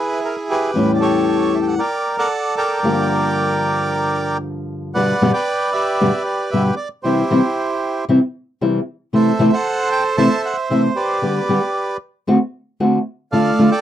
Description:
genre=tango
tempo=115 BPM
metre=4/4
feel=rubato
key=G minor, G major from 4.9 s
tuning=A4 = 438 Hz
part: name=bandoneon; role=melody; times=0.0-13.8 s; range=E4 to A5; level=-18 LUFS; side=right 2 dB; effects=none
part: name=nylon-string guitar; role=accompaniment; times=0.7-13.7 s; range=E2 to G4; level=-16 LUFS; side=left 1 dB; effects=none
room=light reverb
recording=dry, close 1970s-style studio recording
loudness=-16 LUFS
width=side -11 dB against mid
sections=0.0-4.9 A section; 4.9-13.8 B section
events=none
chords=0.0 E; 0.7 A7/E; 1.8 Gm; 2.8 Gm7; 4.9 G; 7.0 C; 9.1 Am/C; 11.2 G/D; 12.3 D7

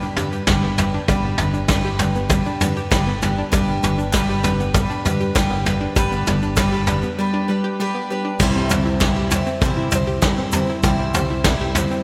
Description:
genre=indie folk with a building arrangement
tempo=98 BPM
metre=4/4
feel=straight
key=C major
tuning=A4 = 440 Hz
part: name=fingerpicked steel-string acoustic guitar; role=accompaniment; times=0.0-1.1 s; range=none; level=barely audible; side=none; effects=none
part: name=picked twelve-string acoustic guitar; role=accompaniment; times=0.0-12.0 s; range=C3 to C5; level=-27 LUFS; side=equal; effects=slapback echo
part: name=analog pluck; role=arpeggios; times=0.0-12.0 s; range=G3 to G4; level=-26 LUFS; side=equal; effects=chorus, slapback echo
part: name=tube shaker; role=percussion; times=0.0-12.0 s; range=none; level=-38 LUFS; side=equal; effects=none
part: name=fingered electric bass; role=bass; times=0.2-11.8 s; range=G1 to C3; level=-27 LUFS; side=equal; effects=none
part: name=soft brush drum kit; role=drums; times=0.2-11.9 s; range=crash cymbal, kick drum, snare drum, toms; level=-22 LUFS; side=equal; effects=none
part: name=group handclap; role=percussion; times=4.1-11.6 s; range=none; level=barely audible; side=none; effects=none
room=moderate lush hall reverb, RT60 2.7 s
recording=big arena sound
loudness=-19 LUFS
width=mono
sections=0.0-8.4 A section; 8.4-12.0 B section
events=break 7.2-8.4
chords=0.0 G; 8.4 C

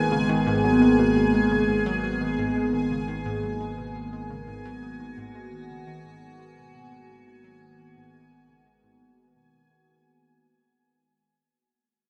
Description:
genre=ambient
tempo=86 BPM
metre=4/4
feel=straight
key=G# minor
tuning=A4 = 445 Hz
part: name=evolving wavetable pad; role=sustained chords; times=0.0-10.1 s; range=D#3 to G#4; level=-25 LUFS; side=equal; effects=chorus, built-in reverb, phaser
part: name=analog drone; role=bass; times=0.0-10.0 s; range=G#1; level=-40 LUFS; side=equal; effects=chorus
part: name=bubbling stepped-filter texture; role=texture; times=0.0-10.1 s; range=G#5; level=-35 LUFS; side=equal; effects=chorus, built-in reverb
part: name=analog pluck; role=riff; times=0.1-10.0 s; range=G#2 to G#3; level=-36 LUFS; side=equal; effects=chorus, analog delay
room=wet plate reverb, RT60 2.9 s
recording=nothing above 11.0 kHz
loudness=-23 LUFS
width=mono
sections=0.0-10.1 A section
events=fade-out on synth arpeggio sound 0.0-10.1; fade-out on synth drone 0.0-10.1; fade-out 0.0-10.1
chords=0.0 G#madd9

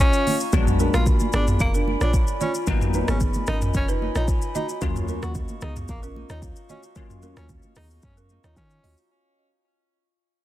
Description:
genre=afrobeats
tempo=112 BPM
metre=4/4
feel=straight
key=Eb minor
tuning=A4 = 440 Hz
part: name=breathy tenor saxophone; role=melody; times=0.0-9.0 s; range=Bb3 to Gb4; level=-28 LUFS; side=equal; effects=digital delay
part: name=glass harmonica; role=sustained chords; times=0.0-9.1 s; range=F4 to Db6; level=-34 LUFS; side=left 3 dB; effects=none
part: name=deep log drum bass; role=bass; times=0.0-9.0 s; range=Gb1 to Eb3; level=-25 LUFS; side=equal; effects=none
part: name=afro-pop drum kit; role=drums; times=0.0-9.1 s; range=hi-hat, kick drum, rim click, shaker, toms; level=-24 LUFS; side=equal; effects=soft clipping on snare
part: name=congas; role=percussion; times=0.3-9.0 s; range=none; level=-32 LUFS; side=right 3 dB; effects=none
part: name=bell-like tine electric piano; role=accompaniment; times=0.5-7.5 s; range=Gb3 to F4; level=-28 LUFS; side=left 6 dB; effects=ensemble chorus
part: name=balafon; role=riff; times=0.8-8.9 s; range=Bb3 to Eb5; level=-31 LUFS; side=right 5 dB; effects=digital delay
room=small room ambience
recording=dense, heavily limited modern master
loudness=-20 LUFS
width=side -14 dB against mid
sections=0.0-9.1 A section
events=fade-out 0.0-9.1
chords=0.0 Eb7sus2; 0.5 Bb7b9b13; 2.7 Abm7; 4.8 Ebm9

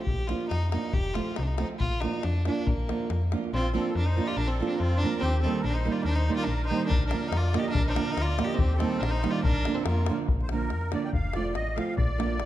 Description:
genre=balkan folk, Balkan wedding band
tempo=142 BPM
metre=2/4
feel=straight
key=Bb major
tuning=A4 = 439 Hz
part: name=clear fiddle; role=melody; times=0.0-10.2 s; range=Bb3 to G4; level=-32 LUFS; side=equal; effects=none
part: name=nylon-string guitar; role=accompaniment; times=0.0-12.4 s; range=D3 to F4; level=-31 LUFS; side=right 5 dB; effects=none
part: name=slap-like FM bass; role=bass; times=0.1-12.5 s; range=F1 to F2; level=-28 LUFS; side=left 1 dB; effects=none
part: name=davul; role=percussion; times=0.1-3.5, 6.9-12.5 s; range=none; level=-31 LUFS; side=left 2 dB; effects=none
part: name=musette accordion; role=second line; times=3.5-12.5 s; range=F4 to G5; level=-35 LUFS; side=right 1 dB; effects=none
room=moderate recital hall reverb, RT60 1.4 s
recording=dark, warm production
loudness=-25 LUFS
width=side -13 dB against mid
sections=0.0-3.5 A section; 3.5-10.3 B section; 10.3-12.5 C section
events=speeding up 0.0-12.5; accordion solo 10.3-12.5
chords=0.1 Bb; 1.0 F; 1.8 Bb; 5.2 Eb; 6.9 Bb; 8.6 Eb; 9.4 Bb; 11.1 F

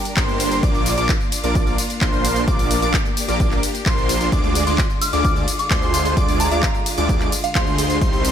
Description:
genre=EDM, festival progressive house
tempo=130 BPM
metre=4/4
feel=straight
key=unclear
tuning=A4 = 440 Hz
part: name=clear studio string section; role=sustained chords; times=0.0-8.3 s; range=C3 to Bb4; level=-31 LUFS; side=equal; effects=none
part: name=house drum kit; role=drums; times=0.1-8.3 s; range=handclaps, hi-hat, ride cymbal, tambourine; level=-25 LUFS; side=left 1 dB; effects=studio reverb
part: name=wide unison lead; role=arpeggios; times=0.2-8.3 s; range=C6 to D6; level=-26 LUFS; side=equal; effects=sidechain pumping, ping-pong delay
part: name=supersaw chords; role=riff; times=0.2-8.3 s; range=G3 to D5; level=-23 LUFS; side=right 1 dB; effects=analog chorus, sidechain pumping, ping-pong delay
part: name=wide detuned saw bass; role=bass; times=0.2-8.3 s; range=G1 to D2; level=-24 LUFS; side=equal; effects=chorus, sidechain pumping
part: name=electronic kick drum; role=drums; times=0.2-8.1 s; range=none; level=-21 LUFS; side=equal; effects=studio reverb
part: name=soft synth bell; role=melody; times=4.7-7.6 s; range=F5 to F6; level=-26 LUFS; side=equal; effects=chorus, phaser, ping-pong delay
room=little or no reverb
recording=none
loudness=-16 LUFS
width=side -9 dB against mid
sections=0.0-8.3 A section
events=none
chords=0.0 Gm; 0.6 Bb; 4.3 Ddim

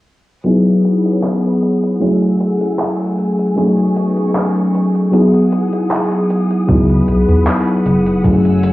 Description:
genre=vaporwave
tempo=77 BPM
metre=4/4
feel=straight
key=unclear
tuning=A4 = 441 Hz
part: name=mellow FM electric piano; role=accompaniment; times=0.4-8.7 s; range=F#3 to G#4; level=-13 LUFS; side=equal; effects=analog chorus, tape echo
part: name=clear studio string section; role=sustained chords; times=0.5-8.7 s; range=A3 to E6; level=-26 LUFS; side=equal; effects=none
part: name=detuned 8-bit digital drum machine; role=drums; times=0.5-8.7 s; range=handclaps, hi-hat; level=-24 LUFS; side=equal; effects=overdrive, gated reverb
part: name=chorused synth bass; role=bass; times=6.7-8.7 s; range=F#1 to E2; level=-15 LUFS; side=equal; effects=none
part: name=electronic kick drum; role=drums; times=6.7-8.4 s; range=none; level=-17 LUFS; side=equal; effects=overdrive
room=moderate lush hall reverb, RT60 2.5 s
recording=cassette tape, low-pass filter, small room reverb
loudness=-12 LUFS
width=side -17 dB against mid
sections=0.5-8.7 A section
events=filter sweep 0.5-8.7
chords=0.5 C#m11; 2.0 F#m9; 3.6 B13; 5.1 Emaj9; 6.7 C#m11

